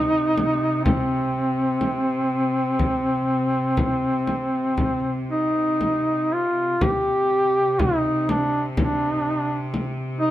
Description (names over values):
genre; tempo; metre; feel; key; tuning
caucasian folk, Caucasian lament; 61 BPM; 4/4; rubato; C minor; A4 = 440 Hz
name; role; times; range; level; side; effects
warm duduk; melody; 0.0-10.3 s; C4 to G4; -21 LUFS; equal; none
bright chamber string section; drone; 0.0-10.3 s; C3; -29 LUFS; equal; none
frame drum; percussion; 0.4-10.0 s; none; -25 LUFS; left 1 dB; none
room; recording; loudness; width
light reverb; close, detailed microphones; -20 LUFS; side -13 dB against mid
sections
0.0-6.8 A section; 6.8-10.3 B section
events
none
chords
none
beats
0.84 1.81 | 2.79 3.77 4.76 5.79 | 6.81 7.79 8.77 9.73